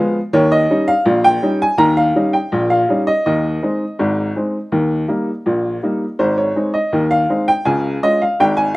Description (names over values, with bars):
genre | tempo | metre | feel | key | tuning
ragtime piano | 82 BPM | 2/4 | straight | Ab major | A4 = 440 Hz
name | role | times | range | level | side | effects
warm upright piano | solo | 0.0-8.7 s | Ab1 to Bb5 | -14 LUFS | equal | none
room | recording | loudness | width
little or no reverb | recorded outdoors, with no room sound | -14 LUFS | side -20 dB against mid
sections
0.0-8.8 A section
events
none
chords
0.3 Eb7; 3.3 Ab/Eb; 4.7 Eb; 6.2 Ab; 7.6 Db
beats
| 0.34 1.06 | 1.79 2.52 | 3.25 3.99 | 4.72 5.45 | 6.19 6.92 | 7.65 8.38